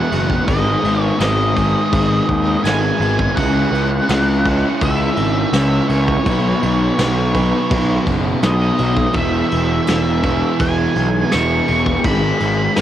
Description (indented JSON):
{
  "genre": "rock, shoegaze and dream pop",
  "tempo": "83 BPM",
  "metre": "4/4",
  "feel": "straight",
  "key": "E major",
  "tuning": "A4 = 440 Hz",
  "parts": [
    { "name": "octave-fuzz lead guitar", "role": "melody", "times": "0.0-12.8 s", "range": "C#5 to C#6", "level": "-22 LUFS", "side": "right 1 dB", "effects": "distortion, cassette tape, plate reverb, analog delay" },
    { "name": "crunchy overdriven guitar", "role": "riff", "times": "0.0-12.8 s", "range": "E2 to B4", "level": "-22 LUFS", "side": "right 9 dB", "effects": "reverse reverb, cassette tape" },
    { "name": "thick fuzz guitar", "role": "riff", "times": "0.0-12.8 s", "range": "E2 to C#4", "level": "-22 LUFS", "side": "left 8 dB", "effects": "distortion, ensemble chorus, cassette tape" },
    { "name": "fuzz picked electric bass", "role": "bass", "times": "0.1-12.8 s", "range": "E1 to D#2", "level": "-18 LUFS", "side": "equal", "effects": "overdrive" },
    { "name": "soft brush drum kit", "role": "drums", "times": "0.1-12.8 s", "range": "crash cymbal, kick drum, snare drum", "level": "-23 LUFS", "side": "equal", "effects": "none" },
    { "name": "tambourine", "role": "percussion", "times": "1.2-12.8 s", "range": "none", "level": "-33 LUFS", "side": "left 12 dB", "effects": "none" }
  ],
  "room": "light reverb",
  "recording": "home recording on cassette",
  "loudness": "-14 LUFS",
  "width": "side -11 dB against mid",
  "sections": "0.0-12.8 A section",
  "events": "none",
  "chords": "0.5 G#m; 3.4 C#m; 6.3 Badd9; 9.2 E; 12.0 G#m",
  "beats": "| 0.47 1.20 1.92 2.65 | 3.37 4.09 4.82 5.54 | 6.26 6.99 7.71 8.43 | 9.15 9.88 10.60 11.32 | 12.04 12.77"
}